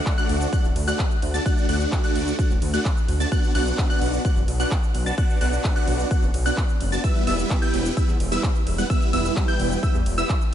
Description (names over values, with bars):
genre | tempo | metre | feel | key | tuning
EDM, festival progressive house | 129 BPM | 4/4 | straight | D major | A4 = 440 Hz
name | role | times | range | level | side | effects
wide unison pluck | arpeggios | 0.0-10.3 s | E6 to A6 | -30 LUFS | equal | cassette tape, sidechain pumping, diffuse ambient delay
supersaw chords | riff | 0.0-10.3 s | G3 to A5 | -26 LUFS | right 1 dB | phaser, sidechain pumping, diffuse ambient delay
big-room dance drum kit | drums | 0.1-10.5 s | cabasa, handclaps, hi-hat, ride cymbal | -34 LUFS | equal | overdrive
electronic kick drum | drums | 0.1-10.4 s | none | -22 LUFS | equal | overdrive
wide detuned saw bass | bass | 0.3-10.2 s | D1 to E2 | -25 LUFS | equal | chorus, sidechain pumping
room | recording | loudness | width
light reverb | nothing above 10.9 kHz | -20 LUFS | side -10 dB against mid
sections
0.0-10.5 A section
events
none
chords
0.0 D; 3.3 Bm; 7.0 Em